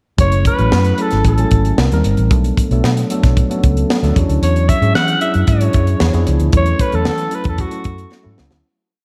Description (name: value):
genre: polished 1980s jazz-funk pop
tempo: 113 BPM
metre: 4/4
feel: straight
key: unclear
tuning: A4 = 441 Hz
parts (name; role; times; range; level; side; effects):
- growling alto saxophone; melody; 0.2-8.4 s; F#4 to F#5; -22 LUFS; equal; none
- tine electric piano; accompaniment; 0.2-8.7 s; F3 to G#5; -22 LUFS; equal; overdrive, analog chorus
- vintage muted fingered electric bass; bass; 0.2-8.6 s; F#1 to E3; -18 LUFS; equal; none
- tight funk drum kit; drums; 0.2-8.6 s; hi-hat, kick drum, snare drum; -20 LUFS; equal; none
room: moderate lush hall reverb, RT60 1.6 s, small room reverb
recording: dreamy mix soaked in reverb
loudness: -15 LUFS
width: mono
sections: 0.2-8.6 verse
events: fade-out 6.5-8.6; drum fill 8.1-8.6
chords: 0.2 F#m9; 1.8 Cm7; 2.3 Bm7; 4.2 E13; 6.0 E7b9; 6.5 A6/E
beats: | 0.19 0.72 1.25 1.78 | 2.31 2.84 3.37 3.90 | 4.42 4.95 5.48 6.01 | 6.54 7.07 7.59 8.12